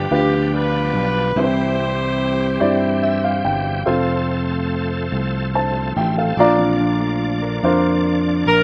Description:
gospel; 48 BPM (dotted quarters); 6/8; straight; F major; A4 = 440 Hz
clear saxophone section; melody; 0.0-3.5, 8.5-8.6 s; D4 to C5; -23 LUFS; equal
dark upright piano; accompaniment; 0.0-8.6 s; G2 to Bb5; -22 LUFS; equal
bright tonewheel organ; sustained chords; 0.0-8.6 s; E3 to G5; -29 LUFS; equal; slow rotary speaker, chorus vibrato
fingered electric bass; bass; 0.0-8.6 s; F1 to G2; -24 LUFS; equal
mellow electric guitar; second line; 6.6-8.6 s; E3 to Bb4; -31 LUFS; equal
little or no reverb; recorded outdoors, with no room sound; -19 LUFS; mono
0.0-8.6 A section
upright piano fill 2.6-3.9; tonewheel organ fill 2.6-3.9
0.0 G7; 1.4 C; 3.9 F; 6.4 Bb
0.10 | 1.36 2.61 | 3.87 5.12 | 6.38 7.63

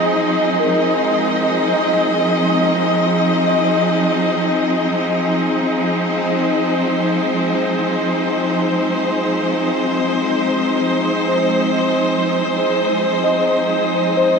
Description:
ambient; free time; Ab major; A4 = 442 Hz
warm studio string section; sustained chords; 0.0-14.4 s; F3 to Eb5; -15 LUFS; equal
celesta; arpeggios; 0.0-4.8, 13.2-14.4 s; Bb4 to Eb5; -22 LUFS; equal; analog chorus, ping-pong delay
organ-like drone; drone; 0.0-14.4 s; Ab3; -30 LUFS; right 3 dB
wind-like tuned noise texture; texture; 0.0-14.4 s; Eb5 to Eb6; -27 LUFS; right 5 dB
wet lush hall reverb, RT60 2.6 s; dreamy mix soaked in reverb; -15 LUFS; side -5 dB against mid
0.0-4.8 A section; 4.8-14.4 B section
0.0 Ab6
free time

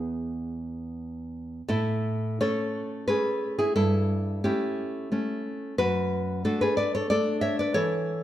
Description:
romantic piece for solo classical guitar; 89 BPM; 3/4; uneven beats, rubato; A major; A4 = 439 Hz
nylon-string guitar; solo; 0.0-8.2 s; E2 to E5; -25 LUFS; equal
moderate recital hall reverb, RT60 1.6 s; minimal, uncompressed stereo recording; -25 LUFS; side -12 dB against mid
0.0-1.7 A section; 1.7-8.2 B section
0.0 E; 1.7 A; 3.7 A7/G; 5.8 D/F#
0.15 0.91 | 1.68 2.40 3.08 | 3.75 4.43 5.10 | 5.78 6.44 7.10 | 7.75

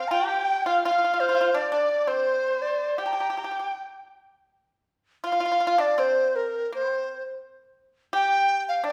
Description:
chinese traditional, Chinese chamber ensemble; 83 BPM; 2/4; rubato; G yu mode; A4 = 441 Hz
reedy large dizi; melody; 0.0-8.9 s; Bb4 to Bb5; -26 LUFS; equal
dark erhu; second line; 0.0-3.7 s; C5 to Bb5; -32 LUFS; equal
pipa; second line; 0.0-8.9 s; C4 to G4; -32 LUFS; equal
wet recital hall reverb, RT60 1.3 s; recorded in a church or concert hall; -24 LUFS; mono
0.0-4.5 A section; 4.5-8.9 B section
| 0.11 0.84 | 1.56 2.27 | 2.99 3.73 | 4.49 5.24 | 5.97 6.70 | 7.42 8.13 | 8.84

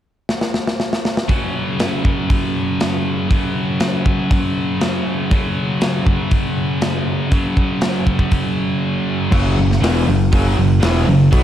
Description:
heavy metal; 119 BPM; 4/4; straight; A4 = 444 Hz
tight metal drum kit; drums; 0.3-11.4 s; crash cymbal, hi-hat, kick drum, snare drum; -19 LUFS; equal
scooped high-gain guitar; riff; 1.3-11.4 s; E2 to B3; -18 LUFS; equal; distortion
cranked stack guitar; riff; 9.3-11.4 s; E2 to B3; -19 LUFS; equal; overdrive
modern bright picked electric bass; bass; 9.3-11.4 s; E1 to B1; -16 LUFS; equal
studio ambience; dark, warm production; -15 LUFS; side -11 dB against mid
0.0-1.3 A section; 1.3-9.3 B section; 9.3-11.4 C section
drum fill 0.3-1.3
0.0 N.C.; 1.3 F#5
0.29 0.80 | 1.30 1.80 2.30 2.81 | 3.31 3.81 4.31 4.82 | 5.32 5.82 6.32 6.83 | 7.33 7.83 8.33 8.83 | 9.33 9.83 10.33 10.83 | 11.33

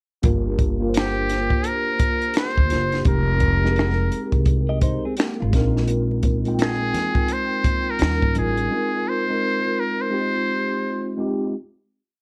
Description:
R&B, neo-soul; 85 BPM; 4/4; swing 63% on 16ths; F dorian; A4 = 442 Hz
mellow tine electric piano; accompaniment; 0.2-11.6 s; G3 to G5; -27 LUFS; equal; ensemble chorus
upright bass; bass; 0.2-8.7 s; F1 to Ab2; -25 LUFS; equal
compact cocktail drum kit; drums; 0.2-8.7 s; finger snaps, hi-hat, kick drum, snare drum; -24 LUFS; equal
trumpet with metal mute; melody; 1.0-11.2 s; G4 to C5; -26 LUFS; equal
clean electric guitar; second line; 4.7-5.7 s; Ab3 to Eb5; -31 LUFS; equal; subtle chorus
congas; percussion; 5.9-8.6 s; -36 LUFS; equal
light reverb; worn, warbling old tape, cassette tape, warbly pitch drift; -21 LUFS; mono
0.2-11.5 A section
0.2 Gm7; 3.1 Fm11; 5.5 Bb9sus4; 8.0 Eb9; 8.7 Ab69; 10.1 Fm9
| 0.23 0.94 1.65 2.35 | 3.06 3.77 4.47 5.18 | 5.88 6.59 7.29 8.00 | 8.71 9.41 10.12 10.82

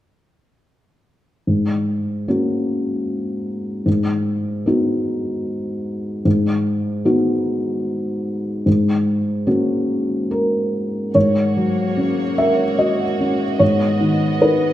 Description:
neoclassical piano and strings; 74 BPM; 3/4; rubato; A4 = 440 Hz
felt-muted upright piano; accompaniment; 1.5-14.7 s; G#2 to E5; -17 LUFS; equal
rich chamber string section; sustained chords; 11.2-14.7 s; A#3 to D#5; -25 LUFS; right 4 dB
moderate concert hall reverb, RT60 1.8 s; -17 LUFS; side -13 dB against mid
1.5-11.1 A section; 11.1-14.7 B section
1.5 F#/G#; 3.9 G#m7; 8.7 F#/G#; 13.6 G#m7
| 1.46 2.28 3.07 | 3.87 4.66 5.45 | 6.25 7.05 7.85 | 8.66 9.47 10.31 | 11.15 11.97 12.79 | 13.61 14.41

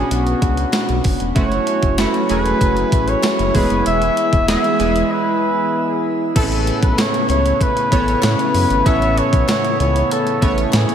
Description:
1980s-style pop; 96 BPM; 4/4; straight; A major; A4 = 437 Hz
warm flugelhorn; melody; 0.0-10.9 s; F#4 to E5; -19 LUFS; equal; tape echo, shimmer reverb
chorused retro synth keys; accompaniment; 0.0-10.9 s; A2 to C#5; -20 LUFS; right 1 dB; shimmer reverb
round analog bass; bass; 0.0-10.9 s; E1 to A2; -20 LUFS; equal
clean 12-bit digital drum machine; drums; 0.1-10.9 s; crash cymbal, hi-hat, kick drum, snare drum, tambourine; -20 LUFS; equal
group handclap; percussion; 0.7-10.9 s; barely audible
warm brass ensemble; sustained chords; 1.4-10.9 s; C#3 to B4; -25 LUFS; left 2 dB; shimmer reverb
wet cathedral reverb, RT60 5.5 s; dreamy mix soaked in reverb; -14 LUFS; side -8 dB against mid
0.0-6.4 A section; 6.4-10.9 B section
break 5.1-6.4
0.0 Bmadd9; 1.4 F#m7; 3.5 E; 6.4 Aadd9
0.11 0.74 | 1.36 1.99 2.61 3.24 | 3.86 4.49 5.11 5.74 | 6.36 6.99 7.61 8.24 | 8.86 9.49 10.11 10.74

